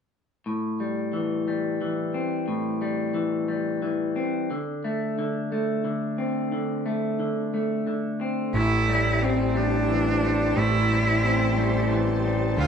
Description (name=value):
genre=rock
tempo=59 BPM (dotted quarters)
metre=6/8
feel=straight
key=A minor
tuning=A4 = 440 Hz
part: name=electric guitar through a small old amp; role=arpeggios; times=0.5-12.7 s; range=A2 to C4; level=-25 LUFS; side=left 2 dB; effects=none
part: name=shimmering ambient pad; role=sustained chords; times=10.1-12.7 s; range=G4 to A5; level=-35 LUFS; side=right 2 dB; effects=chorus, built-in reverb
part: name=fuzz picked electric bass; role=bass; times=8.5-12.7 s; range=A1 to D2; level=-24 LUFS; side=right 2 dB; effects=overdrive
part: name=bright cello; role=melody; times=8.6-12.7 s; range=C4 to F4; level=-25 LUFS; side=right 2 dB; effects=none
room=wet large studio reverb, RT60 0.9 s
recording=band playing live in one room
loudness=-23 LUFS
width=side -7 dB against mid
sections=0.5-8.5 A section; 8.5-12.7 B section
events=none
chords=0.5 Am7; 4.5 D5; 8.5 Am7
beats=| 0.47 1.48 | 2.49 3.50 | 4.51 5.52 | 6.53 7.54 | 8.55 9.55 | 10.56 11.57 | 12.58